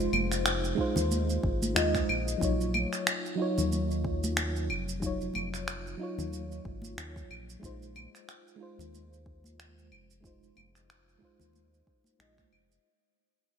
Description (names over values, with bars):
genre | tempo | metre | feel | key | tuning
sunset chillout | 92 BPM | 4/4 | swing 56% on 16ths | unclear | A4 = 440 Hz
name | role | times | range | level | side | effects
mellow FM electric piano | accompaniment | 0.0-12.9 s | Gb3 to Eb5 | -32 LUFS | equal | chorus, tremolo, auto-pan, vintage 12-bit sampler grit, low-pass filter, ping-pong delay
round analog bass | bass | 0.0-12.8 s | F1 to Eb2 | -34 LUFS | equal | none
electronic shaker, claves and finger snaps | drums | 0.0-12.8 s | none | -32 LUFS | right 1 dB | gated reverb
congas | percussion | 0.1-12.5 s | none | -38 LUFS | right 1 dB | none
electronic kick drum | drums | 0.8-12.5 s | none | -35 LUFS | equal | none
room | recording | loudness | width
moderate plate reverb, RT60 3.1 s | bright 1980s-style digital production | -28 LUFS | side -7 dB against mid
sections
0.0-12.8 A section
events
fade-out 0.0-12.8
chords
0.0 Fm7; 2.4 Ebm9; 7.6 Fm7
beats
0.46 1.11 1.76 | 2.41 3.06 3.72 4.37 | 5.02 5.67 6.33 6.98 | 7.63 8.28 8.93 9.59 | 10.24 10.89 11.54 12.19